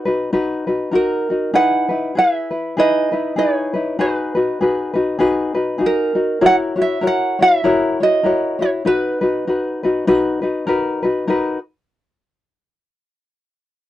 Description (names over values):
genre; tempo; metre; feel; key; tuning
Hawaiian; 98 BPM; 4/4; swing 58% on 8ths; B major; A4 = 440 Hz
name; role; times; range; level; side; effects
tenor ukulele; melody; 0.0-10.7 s; A#4 to F#5; -18 LUFS; right 3 dB; none
tenor ukulele; accompaniment; 0.0-11.6 s; D#4 to C#5; -17 LUFS; left 2 dB; none
room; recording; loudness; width
moderate booth ambience, RT60 0.2 s; dry, close 1970s-style studio recording; -15 LUFS; side -14 dB against mid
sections
0.0-1.5 A section; 1.5-11.3 B section; 11.3-13.7 C section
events
none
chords
0.0 Bmaj7; 1.5 Emaj7; 4.0 G#m7; 6.4 F#7; 8.9 Bmaj7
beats
0.33 0.94 | 1.54 2.15 2.77 3.37 | 3.98 4.59 5.20 5.81 | 6.42 7.03 7.64 8.25 | 8.86 9.47 10.08 10.69 | 11.30